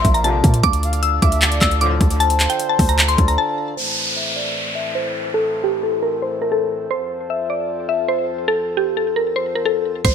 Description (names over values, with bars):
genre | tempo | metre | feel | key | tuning
hip hop, trap | 153 BPM | 4/4 | half-time | A phrygian | A4 = 438 Hz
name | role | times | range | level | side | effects
mallet-like synth pluck | melody | 0.0-10.1 s | G4 to E6 | -19 LUFS | left 1 dB | chorus, low-pass filter, ping-pong delay
gliding portamento lead | second line | 0.0-3.7 s | C5 to F5 | -28 LUFS | right 3 dB | chorus, ping-pong delay
pedal harmonium | sustained chords | 0.0-10.0 s | F2 to D5 | -30 LUFS | left 1 dB | low-pass filter
warm 808-style bass | bass | 0.0-3.4, 10.0-10.1 s | A1 to Bb2 | -18 LUFS | equal | none
trap drum kit | drums | 0.0-3.4, 10.0-10.1 s | handclaps, hi-hat, kick drum | -17 LUFS | equal | overdrive, gated reverb
warm brass ensemble | stabs | 0.2-2.1 s | A2 to F3 | -27 LUFS | left 7 dB | ping-pong delay
downlifter | sound effects | 3.8-6.9, 10.0-10.1 s | none | -24 LUFS | equal | none
room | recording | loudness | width
light reverb | bright 1980s-style digital production | -16 LUFS | side -7 dB against mid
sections
0.0-3.8 A section; 3.8-10.0 B section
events
break 3.4-3.8; filter sweep 3.8-10.0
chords
0.0 Bbadd9; 0.6 Dm; 3.8 Am; 6.9 F